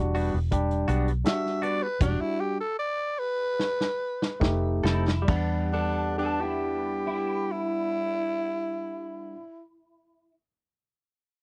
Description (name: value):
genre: straight-eighth soul blues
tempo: 67-83 BPM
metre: 4/4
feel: straight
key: E minor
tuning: A4 = 442 Hz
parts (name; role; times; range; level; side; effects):
- barky tine electric piano; accompaniment; 0.0-9.4 s; G3 to F#5; -34 LUFS; equal; none
- vintage muted fingered electric bass; bass; 0.0-9.4 s; E1 to E2; -30 LUFS; equal; none
- direct-recorded clean electric guitar; stabs; 0.1-9.5 s; G3 to A4; -39 LUFS; equal; phaser
- warm soul drum kit; drums; 0.2-5.5 s; crash cymbal, hi-hat, kick drum, snare drum; -28 LUFS; equal; none
- raspy tenor saxophone; melody; 1.3-9.6 s; D4 to E5; -32 LUFS; equal; none
- electric guitar through a small old amp; second line; 4.9-10.3 s; E4 to A4; -38 LUFS; equal; ensemble chorus
room: little or no reverb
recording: dry, close 1970s-style studio recording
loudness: -28 LUFS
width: mono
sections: 0.0-5.3 A section; 5.3-8.8 B section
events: slowing down 0.0-5.3; stop 2.0-4.4; drum fill 3.6-5.3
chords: 0.0 Em9; 4.4 F7; 5.3 Em9